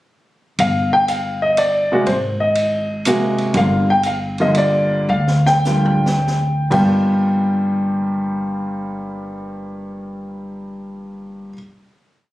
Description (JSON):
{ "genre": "jazz piano trio", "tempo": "85-122 BPM", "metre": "3/4", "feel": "swing 67% on 8ths", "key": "G minor", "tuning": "A4 = 442 Hz", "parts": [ { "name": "warm concert grand piano", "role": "melody", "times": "0.6-11.5 s", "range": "G2 to G5", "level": "-17 LUFS", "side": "equal", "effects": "none" }, { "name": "upright bass", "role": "bass", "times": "0.6-11.5 s", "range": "G1 to D2", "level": "-22 LUFS", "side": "equal", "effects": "none" }, { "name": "open jazz drum kit", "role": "drums", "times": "0.6-6.8 s", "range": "crash cymbal, hi-hat, kick drum, ride cymbal, snare drum, toms", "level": "-29 LUFS", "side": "right 1 dB", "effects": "none" } ], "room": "light reverb", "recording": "recorded on a phone in the room, club reverb, compression", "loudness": "-15 LUFS", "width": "side -16 dB against mid", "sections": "0.6-6.9 A section; 6.9-11.2 final hit", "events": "slowing down 3.5-6.9; drum fill 5.1-6.3", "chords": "0.6 G5; 2.1 Ab9; 3.5 Gm7", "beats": "| 0.59 1.08 1.58 | 2.07 2.56 3.06 | 3.55 4.05 4.56 | 5.09 5.66 6.27 | 6.94 7.64 8.35 | 9.05 9.76 10.46" }